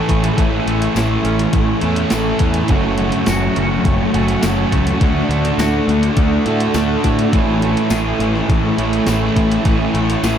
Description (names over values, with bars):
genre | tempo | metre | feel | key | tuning
rock, shoegaze and dream pop | 104 BPM | 4/4 | straight | A major | A4 = 440 Hz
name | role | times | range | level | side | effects
string machine, cellos | sustained chords | 0.0-10.4 s | A3 to D6 | -21 LUFS | equal | ensemble chorus
twangy electric guitar | arpeggios | 0.0-10.4 s | E3 to G#4 | -26 LUFS | equal | lush chorus, tape echo
overdriven electric guitar | riff | 0.0-10.4 s | F#2 to A4 | -20 LUFS | right 8 dB | reverse reverb
thick fuzz guitar | riff | 0.0-10.4 s | F#2 to D4 | -21 LUFS | left 7 dB | distortion, wide subtle chorus
growling picked electric bass | bass | 0.1-10.4 s | F#1 to A2 | -20 LUFS | equal | overdrive
crisp 8-bit digital drum machine | drums | 0.1-10.4 s | hi-hat, kick drum, snare drum | -20 LUFS | equal | overdrive
tambourine | percussion | 1.0-10.4 s | none | -32 LUFS | left 13 dB | none
room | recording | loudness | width
moderate huge ambient reverb, RT60 4.3 s | dreamy mix soaked in reverb | -14 LUFS | side -9 dB against mid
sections
0.0-10.4 A section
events
none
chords
0.0 Amaj7; 2.7 F#m; 5.0 D; 7.3 Amaj7